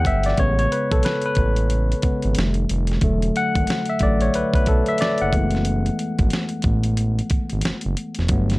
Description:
R&B, neo-soul; 91 BPM; 4/4; swing 61% on 16ths; A4 = 439 Hz
barky tine electric piano; accompaniment; 0.0-8.6 s; C#3 to G5; -22 LUFS; left 1 dB; overdrive
smooth synth bass; bass; 0.0-8.6 s; E1 to B1; -21 LUFS; equal
dusty soul sampler-style drum kit; drums; 0.1-8.6 s; hi-hat, kick drum, snare drum; -23 LUFS; equal
light reverb; -18 LUFS; side -21 dB against mid
0.0-8.6 A section
tine electric piano solo 0.0-8.6
0.4 Amaj9; 2.4 F9; 3.0 E9sus4; 5.3 F#m11
| 0.38 1.04 1.70 2.36 | 3.02 3.68 4.34 5.00 | 5.66 6.32 6.98 7.64 | 8.29

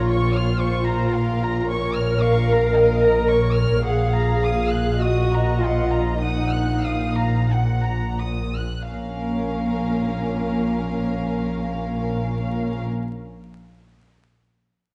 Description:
classical, slow romantic movement for string orchestra; 41-61 BPM; 4/4; rubato; Bb minor; A4 = 440 Hz
warm chamber violin section; melody; 0.0-12.9 s; F5 to Gb6; -33 LUFS; equal
dark studio violin section; second line; 0.0-12.8 s; Db4 to Gb5; -33 LUFS; equal
warm chamber viola section; accompaniment; 0.0-12.9 s; Bb3 to Bb4; -25 LUFS; equal
clear chamber double bass section; bass; 0.0-12.9 s; Bb1; -27 LUFS; equal
dark chamber cello section; bass; 0.0-12.8 s; Bb2; -28 LUFS; equal
moderate scoring stage reverb, RT60 1.7 s; dark, warm production, vinyl crackle, nothing above 11.0 kHz; -22 LUFS; mono
0.0-8.9 A section; 8.9-14.3 B section
slowing down 0.0-8.9
0.0 Bbm; 3.8 Ebm/Bb; 8.9 Bbm
0.53 1.65 2.75 | 3.84 4.98 6.20 7.49 | 8.90 10.26 11.62

